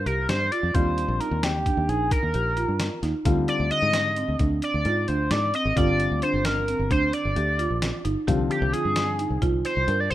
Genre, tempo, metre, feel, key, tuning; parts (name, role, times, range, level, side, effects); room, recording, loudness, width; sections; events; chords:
progressive instrumental, band music in an uneven meter; 263 BPM (eighths); 11/8; straight; G phrygian; A4 = 440 Hz
sync lead; melody; 0.0-10.1 s; G4 to Eb5; -26 LUFS; equal; chorus
warm concert grand piano; accompaniment; 0.0-10.1 s; D3 to F4; -31 LUFS; left 5 dB
fingered electric bass; bass; 0.0-10.1 s; G1 to Ab2; -26 LUFS; equal
marimba with medium mallets; arpeggios; 0.1-10.1 s; D3 to Bb4; -29 LUFS; right 4 dB
trip hop sampler-style drum kit; drums; 0.1-10.1 s; hi-hat, kick drum, snare drum; -28 LUFS; equal
digital ambience; rough home demo mix; -21 LUFS; side -13 dB against mid
0.0-10.1 A section
0.0 C7sus4; 0.8 Ebmaj7; 3.3 Dm7b5; 5.8 G7(no3); 8.3 Csus4